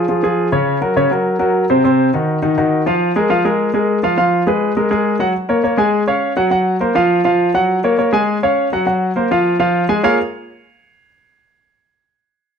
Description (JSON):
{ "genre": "jazz", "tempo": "205 BPM", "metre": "4/4", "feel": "straight", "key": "Bb minor", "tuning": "A4 = 440 Hz", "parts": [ { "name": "clear concert grand piano", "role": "solo", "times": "0.0-10.2 s", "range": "C3 to Ab5", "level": "-13 LUFS", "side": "equal", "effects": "none" } ], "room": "moderate large studio reverb, RT60 0.8 s", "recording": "dark, warm production", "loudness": "-13 LUFS", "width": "side -7 dB against mid", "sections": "0.0-5.3 A section; 5.3-10.0 B section; 10.0-11.2 C section", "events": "none", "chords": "0.0 Db; 0.7 Gb; 1.8 Cdim; 2.4 Ebmadd9; 3.0 Bb5; 4.2 Fdim; 4.8 Gbadd9; 5.3 Absus24; 5.9 Dbadd11; 6.5 Gbmaj7#11; 7.1 N.C.; 7.7 Gbadd9; 8.3 Dbadd11; 8.9 Gbmaj7#11; 9.4 Fm; 10.0 Bbm7" }